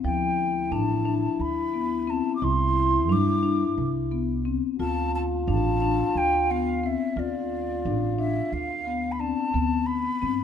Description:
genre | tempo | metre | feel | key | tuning
contemporary instrumental, chamber music in an uneven meter | 177 BPM (eighths) | 7/8 | straight | D dorian | A4 = 444 Hz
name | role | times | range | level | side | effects
breathy mellow jazz flute | melody | 0.0-10.4 s | D5 to D6 | -28 LUFS | equal | none
mellow French horn | second line | 0.0-9.5 s | D4 to F4 | -29 LUFS | left 3 dB | none
marimba with soft mallets | arpeggios | 0.0-10.4 s | F3 to F4 | -28 LUFS | left 8 dB | none
upright bass | bass | 0.0-10.4 s | A1 to G2 | -28 LUFS | right 4 dB | none
room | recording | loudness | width
moderate recital hall reverb, RT60 1.4 s | close, detailed microphones | -23 LUFS | side -8 dB against mid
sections
0.0-9.5 A section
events
none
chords
0.0 Dmadd9; 2.4 Cadd9; 4.8 Dm; 9.5 Cmaj7(no3)/D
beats
| 0.04 0.38 0.72 1.06 1.40 1.74 2.08 | 2.42 2.76 3.10 3.44 3.77 4.11 4.45 | 4.79 5.13 5.47 5.81 6.15 6.49 6.83 | 7.17 7.51 7.85 8.19 8.53 8.87 9.20 | 9.54 9.88 10.22

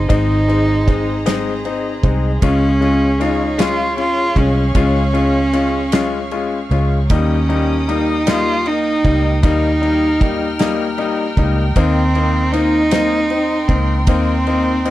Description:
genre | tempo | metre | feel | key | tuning
six-eight pop ballad | 52 BPM (dotted quarters) | 6/8 | straight | Eb mixolydian | A4 = 436 Hz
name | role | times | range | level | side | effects
warm cello | melody | 0.0-14.9 s | C4 to F4 | -18 LUFS | right 2 dB | none
warm studio string section | sustained chords | 0.0-14.9 s | Eb4 to F6 | -26 LUFS | equal | none
vintage muted fingered electric bass | bass | 0.0-14.9 s | Ab1 to Eb2 | -19 LUFS | equal | none
clear concert grand piano | accompaniment | 0.1-14.9 s | G3 to F4 | -20 LUFS | left 5 dB | none
loose indie drum kit | drums | 0.1-14.9 s | kick drum, ride cymbal, snare drum | -19 LUFS | right 1 dB | none
room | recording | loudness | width
little or no reverb | none | -14 LUFS | side -15 dB against mid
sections
0.0-14.9 A section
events
none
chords
0.0 Ab; 2.4 Db; 7.1 Eb; 11.8 Cm7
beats
| 0.10 1.26 | 2.43 3.59 | 4.75 5.92 | 7.10 8.27 | 9.43 10.60 | 11.76 12.92 | 14.08

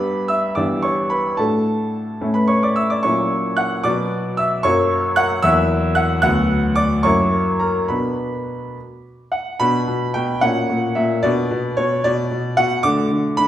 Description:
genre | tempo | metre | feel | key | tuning
classical-period piano sonatina | 74 BPM (dotted quarters) | 6/8 | rubato | B minor from 3.0 s | A4 = 437 Hz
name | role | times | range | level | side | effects
clear concert grand piano | solo | 0.0-13.5 s | D2 to F#6 | -16 LUFS | equal | none
room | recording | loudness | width
wet recital hall reverb, RT60 1.3 s | recorded in a church or concert hall | -16 LUFS | side -12 dB against mid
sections
0.0-9.6 A section; 9.6-13.5 B section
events
none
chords
0.0 G; 0.6 Em/G; 1.4 D/A; 2.2 A; 3.0 F#7/A#; 3.8 Bm; 4.6 F#; 5.4 F#7/E; 6.2 Bm/D; 7.0 F#7; 7.9 Bm; 10.4 F#/A#; 11.2 Bm; 12.8 D5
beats
0.56 | 1.38 2.21 | 3.03 3.85 | 4.64 5.43 | 6.23 7.04 | 7.89 8.75 | 9.60 10.42 | 11.23 12.04 | 12.84

